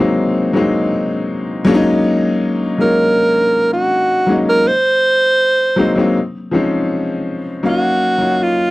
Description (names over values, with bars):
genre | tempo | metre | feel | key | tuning
soul | 80 BPM | 4/4 | straight | unclear | A4 = 440 Hz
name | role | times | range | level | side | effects
breathy tenor saxophone | melody | 0.0-8.7 s | Eb4 to C5 | -13 LUFS | right 1 dB | none
clear baby grand piano | accompaniment | 0.0-8.7 s | F3 to F5 | -15 LUFS | left 2 dB | none
room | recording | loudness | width
light reverb | dry, close 1970s-style studio recording | -13 LUFS | side -19 dB against mid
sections
0.0-7.7 A section; 7.7-8.7 B section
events
none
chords
0.0 Ab7; 1.7 Gb6; 4.7 Ab7; 6.2 Dbmaj7; 7.7 Ebm9